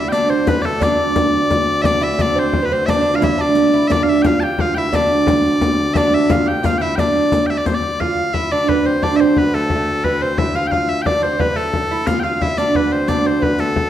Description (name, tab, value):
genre	medieval dance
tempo	117 BPM (dotted quarters)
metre	6/8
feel	straight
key	D dorian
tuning	A4 = 440 Hz
part	loud bright bagpipes	melody	0.0-13.9 s	A4 to A5	-20 LUFS	left 2 dB	none
part	lute	second line	0.0-13.9 s	A3 to G4	-18 LUFS	right 3 dB	none
part	rich viola da gamba	drone	0.0-13.9 s	D2	-25 LUFS	left 1 dB	none
part	riq	percussion	0.1-7.8, 12.1-13.7 s	none	-25 LUFS	left 4 dB	none
part	frame drum	percussion	0.5-13.9 s	none	-23 LUFS	left 3 dB	none
room	wet recital hall reverb, RT60 1.5 s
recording	none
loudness	-14 LUFS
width	side -11 dB against mid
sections	0.0-8.0 A section; 8.0-13.9 B section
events	none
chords	none